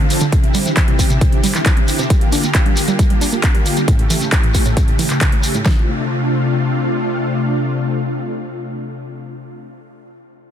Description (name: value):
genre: uplifting trance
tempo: 135 BPM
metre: 4/4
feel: straight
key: D minor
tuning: A4 = 440 Hz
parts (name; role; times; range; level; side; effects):
- analog string pad; sustained chords; 0.0-9.6 s; C3 to A4; -20 LUFS; left 1 dB; ensemble chorus, sidechain pumping
- analog pluck; arpeggios; 0.0-5.9 s; A2 to D4; -22 LUFS; right 3 dB; chorus, vintage 12-bit sampler grit, sidechain pumping, ping-pong delay
- big-room dance drum kit; drums; 0.1-5.6 s; handclaps, hi-hat; -23 LUFS; right 1 dB; overdrive
- shekere; percussion; 0.1-5.6 s; none; -27 LUFS; left 1 dB; none
- big-room dance drum kit; drums; 0.3-5.8 s; kick drum, snare drum; -14 LUFS; equal; overdrive
room: digital ambience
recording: dense, heavily limited modern master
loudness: -13 LUFS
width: side -9 dB against mid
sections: 0.0-5.7 A section; 5.7-9.2 B section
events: filter sweep on synth pluck 0.0-5.7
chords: 0.3 Cadd9; 2.1 Gm7; 3.9 A7; 5.7 Dm7